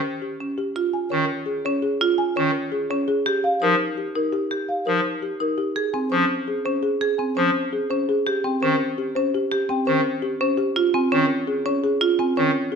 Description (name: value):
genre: classical, minimalist pattern music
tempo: 336 BPM (eighths)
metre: 7/8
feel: straight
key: unclear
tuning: A4 = 442 Hz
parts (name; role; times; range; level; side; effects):
- folk marimba with soft mallets; melody; 0.0-12.8 s; G4 to Ab5; -25 LUFS; left 2 dB; none
- marimba with hard mallets; arpeggios; 0.0-12.6 s; C4 to Ab4; -23 LUFS; right 2 dB; none
- pipe organ, clarinet reed; accompaniment; 1.1-12.5 s; Eb3 to F3; -24 LUFS; right 1 dB; none
room: wet stone room reverb, RT60 1.3 s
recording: none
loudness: -20 LUFS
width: side -6 dB against mid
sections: 0.0-12.8 A section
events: none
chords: 0.0 Eb7 (rootless); 0.8 Db; 3.3 F9sus4 (rootless); 5.8 Fm (rootless); 8.3 Eb7 (rootless); 10.8 Dbmaj7